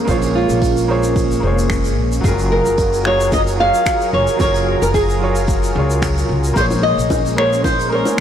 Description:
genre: sunset chillout.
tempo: 111 BPM.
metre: 4/4.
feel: swing 53% on 16ths.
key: Bb minor.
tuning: A4 = 440 Hz.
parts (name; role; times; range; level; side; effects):
bright concert grand piano; accompaniment; 0.0-8.2 s; Gb3 to Db5; -22 LUFS; moving between left 5 dB and right 5 dB; auto-pan, ping-pong delay.
lush unison pad; sustained chords; 0.0-8.2 s; Gb3 to Bb4; -23 LUFS; equal; chorus.
downlifter; sound effects; 0.0-2.2 s; none; -35 LUFS; right 1 dB; none.
flamenco guitar; melody; 0.1-8.2 s; F4 to F5; -18 LUFS; right 1 dB; tape echo.
upright bass; bass; 0.1-8.0 s; F1 to Db2; -20 LUFS; equal; tube saturation.
electronic kick drum; drums; 0.1-8.2 s; none; -21 LUFS; equal; overdrive.
vintage brush drum kit; drums; 0.1-8.2 s; finger snaps, hi-hat, shaker; -28 LUFS; equal; soft clipping on snare.
bongos; percussion; 6.7-8.2 s; none; -25 LUFS; equal; none.
room: light reverb, small room reverb.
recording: blown-out, overdriven recording, overdrive.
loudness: -14 LUFS.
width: side -9 dB against mid.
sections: 0.0-8.2 A section.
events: none.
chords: 0.0 Bbm9; 2.2 Gbmaj9; 6.6 Bbm9.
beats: | 0.08 0.62 1.16 1.70 | 2.24 2.78 3.32 3.86 | 4.40 4.94 5.48 6.02 | 6.56 7.10 7.64 8.19.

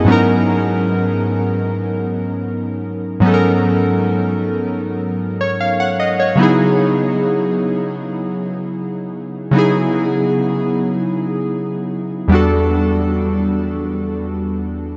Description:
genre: R&B.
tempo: 76 BPM.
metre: 4/4.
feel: straight.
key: unclear.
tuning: A4 = 437 Hz.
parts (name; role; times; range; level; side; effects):
warm analog keys; solo; 0.0-15.0 s; E2 to F#5; -17 LUFS; equal; chorus, diffuse ambient delay.
room: wet huge ambient reverb, RT60 7.7 s.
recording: dreamy mix soaked in reverb, nothing above 7.8 kHz.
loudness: -17 LUFS.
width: mono.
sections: 0.0-15.0 A section.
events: none.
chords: 0.1 G#m11; 6.4 C#m11; 12.3 Em11.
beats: | 0.07 0.86 1.65 2.44 | 3.23 4.02 4.81 5.60 | 6.39 7.17 7.96 8.75 | 9.54 10.33 11.12 11.91 | 12.70 13.49 14.28.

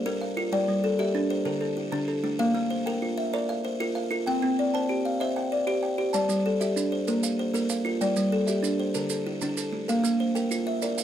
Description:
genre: southern african traditional, mbira-style interlocking cycle.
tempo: 128 BPM (dotted quarters).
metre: 12/8.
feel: straight.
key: G dorian.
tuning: A4 = 438 Hz.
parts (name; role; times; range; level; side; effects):
buzzing kalimba; arpeggios; 0.0-11.0 s; D3 to G5; -26 LUFS; left 2 dB; none.
buzzing kalimba; arpeggios; 0.0-11.0 s; D3 to A5; -29 LUFS; right 3 dB; none.
maracas; percussion; 6.1-11.0 s; none; -35 LUFS; right 8 dB; none.
room: light reverb.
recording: none.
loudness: -24 LUFS.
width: side -10 dB against mid.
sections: 0.0-11.0 A section.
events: none.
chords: 0.0 Bb5; 0.5 Gm; 1.5 D5; 2.4 Bb; 4.3 C; 6.1 G5; 7.1 Bb5; 8.0 Gm; 8.9 D5; 9.9 Bb.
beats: 0.05 | 0.52 0.99 1.46 1.93 | 2.39 2.86 3.33 3.80 | 4.27 4.73 5.20 5.67 | 6.14 6.61 7.07 7.54 | 8.01 8.48 8.95 9.41 | 9.88 10.35 10.82.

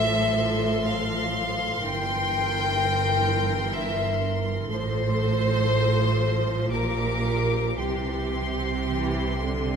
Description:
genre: classical, slow romantic movement for string orchestra.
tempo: 54-64 BPM.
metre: 3/4.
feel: rubato.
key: F major.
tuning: A4 = 440 Hz.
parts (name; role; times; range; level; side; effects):
rich symphonic violin section; melody; 0.0-9.8 s; C6 to D6; -32 LUFS; left 2 dB; none.
warm chamber violin section; second line; 0.0-9.8 s; G4 to G5; -27 LUFS; left 2 dB; none.
warm studio viola section; accompaniment; 0.0-9.8 s; D3 to Bb4; -31 LUFS; left 2 dB; none.
dark chamber double bass section; bass; 0.0-9.8 s; G1 to C2; -30 LUFS; right 4 dB; none.
warm symphonic cello section; bass; 0.0-9.8 s; G2 to C3; -28 LUFS; right 3 dB; none.
room: wet concert hall reverb, RT60 1.8 s.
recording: none.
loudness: -22 LUFS.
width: side -6 dB against mid.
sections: 0.0-9.8 A section.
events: none.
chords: 0.0 F/A; 1.8 C7/G; 4.7 F/A; 6.7 Gm7/Bb; 7.8 C.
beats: 0.86 | 1.83 2.79 3.75 | 4.70 5.69 6.71 | 7.77 8.88.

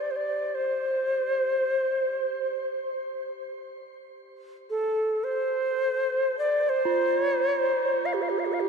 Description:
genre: world meditative, free-time meditation music.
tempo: free time.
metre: none.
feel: none.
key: unclear.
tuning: A4 = 439 Hz.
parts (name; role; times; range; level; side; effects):
Native American-style cedar flute; melody; 0.0-8.7 s; G4 to F5; -25 LUFS; equal; shimmer reverb, ping-pong delay.
bronze singing bowl; texture; 0.0-8.7 s; F4 to G4; -34 LUFS; right 5 dB; shimmer reverb.
room: wet cathedral reverb, RT60 6.3 s.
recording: dark, warm production.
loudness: -24 LUFS.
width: side -5 dB against mid.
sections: 0.0-8.7 A section.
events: none.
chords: none.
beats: free time.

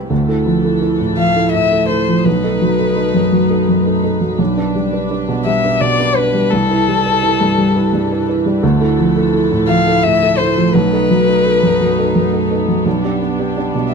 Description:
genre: neoclassical piano and strings.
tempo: 56 BPM (dotted quarters).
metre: 6/8.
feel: rubato.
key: unclear.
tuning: A4 = 439 Hz.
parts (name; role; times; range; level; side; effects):
felt-muted upright piano; accompaniment; 0.0-13.9 s; B1 to B4; -14 LUFS; right 1 dB; none.
rich studio string section; sustained chords; 0.0-13.9 s; E3 to B4; -25 LUFS; right 3 dB; none.
warm violin; melody; 1.2-12.5 s; A4 to F5; -16 LUFS; left 5 dB; none.
room: light reverb.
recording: dark, warm production.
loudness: -12 LUFS.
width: side -5 dB against mid.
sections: 0.1-13.9 A section.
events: none.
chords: 0.1 Dmadd9; 2.3 B7; 4.4 G/B; 6.5 Cmaj7 (rootless); 8.6 Dmadd9 (rootless); 10.7 B7; 12.9 Em7/B (rootless).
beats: | 0.11 1.18 | 2.25 3.33 | 4.39 5.46 | 6.52 7.57 | 8.62 9.68 | 10.74 11.80 | 12.86 13.93.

